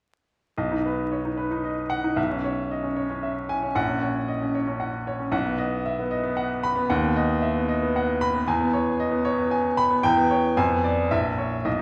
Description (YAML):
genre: classical, virtuoso piano study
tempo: 114 BPM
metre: 3/4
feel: rubato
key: B major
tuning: A4 = 440 Hz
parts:
  - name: clear baby grand piano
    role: solo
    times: 0.6-11.8 s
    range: A#1 to B5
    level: -24 LUFS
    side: equal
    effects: none
room: wet recital hall reverb, RT60 1.6 s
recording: heard from further back in the room, vinyl crackle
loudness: -25 LUFS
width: mono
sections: 0.6-11.8 A section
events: none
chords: 0.6 B; 2.2 C#m7/B; 3.8 F#/A#; 5.3 B; 6.9 B/D#; 8.5 C#m7/E; 10.0 C#m7b5/E; 10.6 Fdim7; 11.1 A#dim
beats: | 0.58 1.12 1.65 | 2.17 2.70 3.23 | 3.76 4.29 4.81 | 5.33 5.85 6.37 | 6.89 7.41 7.93 | 8.46 8.98 9.51 | 10.03 10.56 11.11 | 11.66